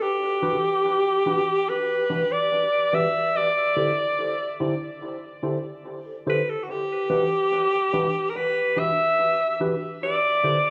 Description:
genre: reggae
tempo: 72 BPM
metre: 4/4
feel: straight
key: E minor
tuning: A4 = 440 Hz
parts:
  - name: warm alto saxophone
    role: melody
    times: 0.0-10.7 s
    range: F#4 to E5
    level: -24 LUFS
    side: equal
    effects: tape echo
  - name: mellow tine electric piano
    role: accompaniment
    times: 0.4-10.6 s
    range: D3 to C5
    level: -31 LUFS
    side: equal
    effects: phaser, dub echo
room: moderate plate reverb, RT60 3.4 s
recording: studio reverb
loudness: -23 LUFS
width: mono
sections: 0.0-10.7 A section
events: none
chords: 0.0 Em7; 3.3 D7sus4; 6.7 Em7; 10.0 D7sus4

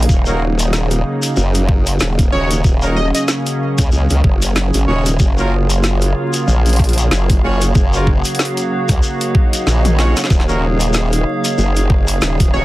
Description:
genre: glitch hop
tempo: 94 BPM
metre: 4/4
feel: swing 57% on 16ths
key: Eb minor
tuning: A4 = 440 Hz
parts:
  - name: warm analog pad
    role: sustained chords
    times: 0.0-12.6 s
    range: Db3 to Gb4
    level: -22 LUFS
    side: right 1 dB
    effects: chorus, tremolo, sidechain pumping
  - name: formant-sweep wobble bass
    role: bass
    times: 0.0-12.6 s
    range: Eb1 to Db2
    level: -15 LUFS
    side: equal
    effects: chorus, overdrive
  - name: drum and bass drum kit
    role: drums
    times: 0.0-12.5 s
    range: hi-hat, rim click, snare drum, toms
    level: -20 LUFS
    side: equal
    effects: overdrive, small room ambience
  - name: warbly tape-like pad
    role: texture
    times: 0.0-12.6 s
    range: Ab4 to F5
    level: -25 LUFS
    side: right 2 dB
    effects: chorus, built-in reverb, sidechain pumping
  - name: electronic kick drum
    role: drums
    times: 0.1-12.5 s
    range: none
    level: -14 LUFS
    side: equal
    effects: overdrive, small room ambience
  - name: shekere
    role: percussion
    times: 0.1-12.5 s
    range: none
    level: -26 LUFS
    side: left 3 dB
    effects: none
  - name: warm horn section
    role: stabs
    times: 0.3-12.6 s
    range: Bb3 to Db5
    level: -23 LUFS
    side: equal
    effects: sidechain pumping, dub echo
  - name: plucky unison lead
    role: melody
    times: 2.3-3.2, 12.5-12.6 s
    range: Db5 to Eb5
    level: -23 LUFS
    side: equal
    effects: dub echo
  - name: swell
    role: sound effects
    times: 9.3-10.3 s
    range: none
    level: -27 LUFS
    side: right 4 dB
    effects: none
room: light reverb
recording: dense, heavily limited modern master, vinyl crackle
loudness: -12 LUFS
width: side -17 dB against mid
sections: 0.0-12.6 A section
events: swell 9.3-10.3; drum fill 9.7-10.3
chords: 0.1 Ebm7; 5.2 Gbmaj7; 10.3 Ebm7

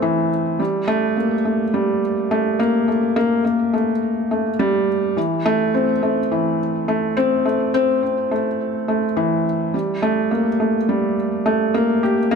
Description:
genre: electronica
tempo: 105 BPM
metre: 4/4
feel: straight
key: unclear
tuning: A4 = 440 Hz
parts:
  - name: felt-muted upright piano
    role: solo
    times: 0.0-12.4 s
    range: E3 to G4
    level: -17 LUFS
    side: equal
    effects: none
room: moderate echo chamber reverb, RT60 2.6 s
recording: none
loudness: -17 LUFS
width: side -5 dB against mid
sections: 0.0-12.4 A section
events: none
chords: none

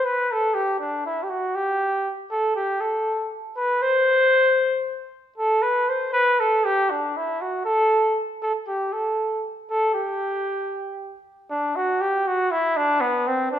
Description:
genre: mexican folk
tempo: 79 BPM (dotted quarters)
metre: 6/8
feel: rubato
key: G major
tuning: A4 = 438 Hz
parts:
  - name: mellow trumpet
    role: solo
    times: 0.0-13.6 s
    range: B3 to C5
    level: -20 LUFS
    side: equal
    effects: none
room: wet recital hall reverb, RT60 1.5 s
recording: minimal, uncompressed stereo recording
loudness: -20 LUFS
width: side -10 dB against mid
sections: 0.0-11.5 A section; 11.5-13.6 A section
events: none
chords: none

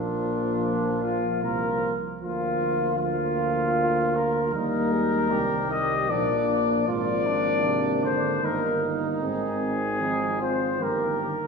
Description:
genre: classical, brass quintet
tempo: 77 BPM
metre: 3/4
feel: straight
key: Bb major, Eb major from 4.5 s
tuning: A4 = 440 Hz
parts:
  - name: warm cornet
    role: melody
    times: 0.0-11.5 s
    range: D4 to Eb5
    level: -26 LUFS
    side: left 4 dB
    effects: none
  - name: mellow trumpet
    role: second line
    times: 0.0-11.3 s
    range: D4 to G4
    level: -31 LUFS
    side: right 6 dB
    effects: none
  - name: mellow French horn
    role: accompaniment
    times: 0.0-11.3 s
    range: G3 to C4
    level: -30 LUFS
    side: equal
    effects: none
  - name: mellow trombone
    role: accompaniment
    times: 0.0-11.5 s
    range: C3 to G3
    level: -33 LUFS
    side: right 3 dB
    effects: none
  - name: mellow tuba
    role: bass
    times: 0.0-11.3 s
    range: G1 to Eb2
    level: -30 LUFS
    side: equal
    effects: none
room: wet recital hall reverb, RT60 1.4 s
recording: recorded in a church or concert hall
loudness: -22 LUFS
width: side -5 dB against mid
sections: 0.0-11.5 A section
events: none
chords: 0.0 Bb; 2.2 Bb/D; 4.5 Eb; 6.1 Bb; 6.9 Bb7/Ab; 8.4 Eb/G; 9.2 Ab; 10.8 Eb/G

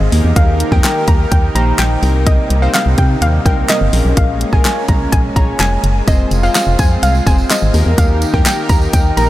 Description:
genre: dance-pop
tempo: 126 BPM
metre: 4/4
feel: straight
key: unclear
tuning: A4 = 440 Hz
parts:
  - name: soft round pluck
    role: melody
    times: 0.0-9.3 s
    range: Eb5 to Bb5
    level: -19 LUFS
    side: equal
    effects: chorus, sidechain pumping, diffuse ambient delay
  - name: glassy digital keys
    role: accompaniment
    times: 0.0-9.3 s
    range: Bb3 to Db5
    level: -22 LUFS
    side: left 2 dB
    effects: chorus, sidechain pumping
  - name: warm analog pad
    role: sustained chords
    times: 0.0-9.3 s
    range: C3 to Bb4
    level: -22 LUFS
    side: equal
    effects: chorus, sidechain pumping
  - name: organ-like FM bass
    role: bass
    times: 0.0-9.3 s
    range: F1 to C3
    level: -14 LUFS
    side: equal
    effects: sidechain pumping
  - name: pop drum kit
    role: drums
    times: 0.1-9.3 s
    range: handclaps, hi-hat, kick drum, snare drum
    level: -15 LUFS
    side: equal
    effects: none
  - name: tambourine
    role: percussion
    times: 6.1-9.3 s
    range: none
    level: -27 LUFS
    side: right 4 dB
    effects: none
room: light reverb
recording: none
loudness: -11 LUFS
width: side -15 dB against mid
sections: 0.0-9.3 A section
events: none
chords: 0.1 Eb; 2.0 Cm7; 3.9 Bbm7; 6.1 Fm; 7.7 Eb

